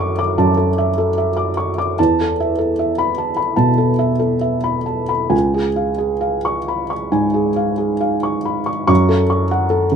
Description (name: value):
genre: neoclassical minimalist piano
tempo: 65-77 BPM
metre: 4/4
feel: rubato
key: unclear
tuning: A4 = 439 Hz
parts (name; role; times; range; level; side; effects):
- felt-muted upright piano; solo; 0.0-10.0 s; C#2 to D6; -15 LUFS; equal; none
room: light reverb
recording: minimal, uncompressed stereo recording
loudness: -15 LUFS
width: side -7 dB against mid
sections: 0.0-8.9 A section; 8.9-10.0 A section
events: none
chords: 0.0 Dadd9/F#; 2.0 Esus4; 5.3 C#; 8.9 F#m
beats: 0.38 1.17 | 1.98 2.77 3.57 4.43 | 5.33 6.23 7.14 8.03 | 8.90 9.73